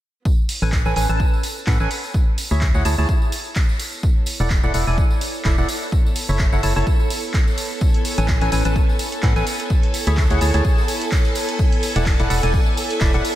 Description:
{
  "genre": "piano house",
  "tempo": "127 BPM",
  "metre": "4/4",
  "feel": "swing 55% on 16ths",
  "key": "A major",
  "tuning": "A4 = 440 Hz",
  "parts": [
    { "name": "electronic kick drum", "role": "drums", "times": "0.3-13.1 s", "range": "none", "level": "-18 LUFS", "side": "equal", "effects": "none" },
    { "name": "tambourine", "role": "percussion", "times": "0.3-13.4 s", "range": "none", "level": "-34 LUFS", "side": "left 2 dB", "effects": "none" },
    { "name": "warm studio string section", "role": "texture", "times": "0.3-13.4 s", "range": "B3 to C#5", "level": "-31 LUFS", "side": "right 1 dB", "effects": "sidechain pumping" },
    { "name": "punchy analog drum machine", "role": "drums", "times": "0.5-13.4 s", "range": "handclaps, hi-hat", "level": "-29 LUFS", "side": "right 1 dB", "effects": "none" },
    { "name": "percussive organ stab", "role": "riff", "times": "0.6-13.2 s", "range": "C#4 to A5", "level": "-25 LUFS", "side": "equal", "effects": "analog chorus, sidechain pumping, analog delay" },
    { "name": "organ-like FM bass", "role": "bass", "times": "0.6-13.2 s", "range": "E1 to A2", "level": "-20 LUFS", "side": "equal", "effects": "sidechain pumping" },
    { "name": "string machine, violins", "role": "sustained chords", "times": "7.8-13.4 s", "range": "A4 to G#5", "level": "-28 LUFS", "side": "right 1 dB", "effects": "ensemble chorus, sidechain pumping" }
  ],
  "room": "light reverb",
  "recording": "none",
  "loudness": "-17 LUFS",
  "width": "side -14 dB against mid",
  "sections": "0.3-13.4 A section",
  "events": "fade-in on string section 0.3-13.4",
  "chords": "0.3 Amaj9; 1.9 Dmaj7sus2; 3.8 E9sus4; 5.7 F#m7; 7.8 Amaj9; 9.5 Dmaj7sus2; 11.4 E9sus4"
}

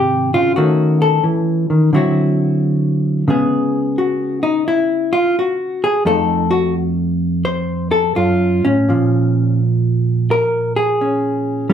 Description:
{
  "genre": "solo jazz",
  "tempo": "86 BPM",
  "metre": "4/4",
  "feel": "swing 68% on 8ths, rubato",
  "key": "unclear",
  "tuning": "A4 = 440 Hz",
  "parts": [
    { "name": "hollow-body jazz guitar", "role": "solo", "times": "0.0-11.7 s", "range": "F2 to C5", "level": "-14 LUFS", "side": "equal", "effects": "none" }
  ],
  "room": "wet club reverb, RT60 0.8 s",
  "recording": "heard from further back in the room",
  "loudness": "-14 LUFS",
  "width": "side -8 dB against mid",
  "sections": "0.0-11.7 A section",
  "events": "hollow-body jazz guitar solo 0.0-11.7",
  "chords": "0.0 Ab6; 0.6 Ebm7b5; 1.9 D9; 3.3 Db5; 6.0 F7b9; 8.9 Bbm7"
}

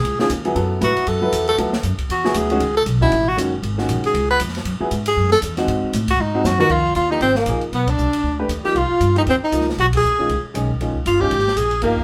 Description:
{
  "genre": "jazz, small-group swing and bop",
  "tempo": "234 BPM",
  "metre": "4/4",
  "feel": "swing 58% on 8ths",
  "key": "F minor from 6.7 s",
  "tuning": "A4 = 440 Hz",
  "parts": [
    { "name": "breathy tenor saxophone", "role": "melody", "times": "0.0-12.0 s", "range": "Bb3 to B4", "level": "-21 LUFS", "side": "equal", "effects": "none" },
    { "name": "upright bass", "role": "bass", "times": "0.0-12.0 s", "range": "F#1 to A2", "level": "-25 LUFS", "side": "equal", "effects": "none" },
    { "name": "open jazz drum kit", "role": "drums", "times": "0.0-12.0 s", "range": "crash cymbal, hi-hat, kick drum, ride cymbal, snare drum, toms", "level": "-30 LUFS", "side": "equal", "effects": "none" },
    { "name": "bright upright piano", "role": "accompaniment", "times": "0.2-12.0 s", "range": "D#3 to B4", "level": "-25 LUFS", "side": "equal", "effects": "none" },
    { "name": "breathy alto saxophone", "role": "second line", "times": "6.6-12.0 s", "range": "Bb3 to G#4", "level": "-26 LUFS", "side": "equal", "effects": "none" }
  ],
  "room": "moderate studio reverb, RT60 0.7 s",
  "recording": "band playing live in one room",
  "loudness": "-19 LUFS",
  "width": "mono",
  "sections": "0.0-6.7 A section; 6.7-12.0 B section",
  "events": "tenor saxophone solo 0.0-6.7; drum fill 6.4; band accent 7.9, 9.9",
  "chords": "0.1 C#7; 0.6 F#m7; 1.6 Bm7; 2.1 E7; 2.6 A6; 3.6 G#5; 4.1 C#; 4.7 Eadd9; 5.7 G#7; 6.7 Fm7; 7.7 G(b13); 8.8 Cm7; 9.8 B69; 10.8 Bbm7"
}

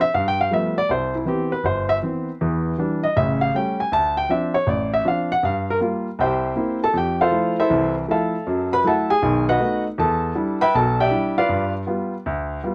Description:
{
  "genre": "solo jazz",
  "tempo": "158 BPM",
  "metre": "4/4",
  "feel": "swing 66% on 8ths",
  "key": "C major",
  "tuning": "A4 = 435 Hz",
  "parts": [
    { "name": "warm baby grand piano", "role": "solo", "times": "0.0-12.7 s", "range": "G1 to B5", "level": "-21 LUFS", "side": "equal", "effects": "none" }
  ],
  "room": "light reverb",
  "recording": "close, detailed microphones",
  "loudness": "-21 LUFS",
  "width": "mono",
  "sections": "0.9-12.7 A section",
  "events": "grand piano solo 0.0-12.7",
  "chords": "0.1 G9; 0.9 Cmaj7; 2.4 Em7; 3.1 A7; 3.9 Dm7; 5.4 Gm7; 6.2 C7; 6.9 Fmaj7; 8.5 F#m7; 9.2 B7; 10.0 Em7; 11.5 G7"
}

